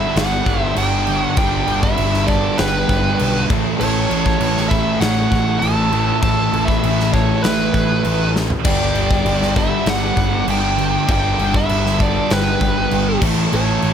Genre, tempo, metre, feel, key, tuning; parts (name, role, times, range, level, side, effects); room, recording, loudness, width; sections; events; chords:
hard rock; 99 BPM; 4/4; straight; A4 = 440 Hz
bluesy overdriven lead guitar; melody; 0.0-13.9 s; B4 to A5; -22 LUFS; right 2 dB; distortion, slapback echo
octave-fuzz lead guitar; second line; 0.0-13.9 s; E4 to E5; -28 LUFS; right 2 dB; distortion
scooped high-gain guitar; riff; 0.0-13.9 s; G2 to A3; -25 LUFS; right 10 dB; distortion
sludgy distorted guitar; riff; 0.0-13.9 s; G2 to A3; -24 LUFS; right 1 dB; overdrive
tight distorted guitar; riff; 0.0-13.9 s; G2 to A3; -24 LUFS; left 13 dB; distortion
fuzz picked electric bass; bass; 0.0-13.9 s; G1 to B1; -22 LUFS; equal; overdrive
big rock drum kit; drums; 0.2-13.9 s; crash cymbal, kick drum, snare drum, toms; -20 LUFS; equal
little or no reverb; -14 LUFS; side -8 dB against mid
0.0-13.9 A section
drum fill 8.4-8.7
0.0 G; 3.5 A; 8.7 G; 13.2 A